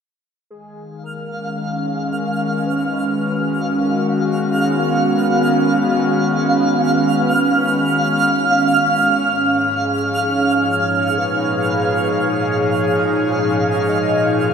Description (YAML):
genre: ambient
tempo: 56 BPM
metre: 4/4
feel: straight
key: G# dorian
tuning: A4 = 441 Hz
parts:
  - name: warm velvety synth lead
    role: melody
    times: 0.5-14.5 s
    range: G#4 to D#5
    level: -29 LUFS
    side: left 1 dB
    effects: chorus, tremolo, shimmer reverb, ping-pong delay
  - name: airy breathy pad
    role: sustained chords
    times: 0.5-14.5 s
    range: G#2 to C#5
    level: -18 LUFS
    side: equal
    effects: chorus, shimmer reverb
  - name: twinkling granular texture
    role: texture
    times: 1.1-14.5 s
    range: E#5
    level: -19 LUFS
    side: right 1 dB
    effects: built-in reverb, shimmer reverb
room: wet concert hall reverb, RT60 2.1 s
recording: none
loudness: -15 LUFS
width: side -7 dB against mid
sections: 0.5-14.5 A section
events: fade-in on soft synth lead 0.5-14.5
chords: 0.5 G#m; 9.1 C#69/G#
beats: | 0.51 1.58 2.65 3.73 | 4.80 5.87 6.94 8.01 | 9.08 10.15 11.23 12.30 | 13.37 14.44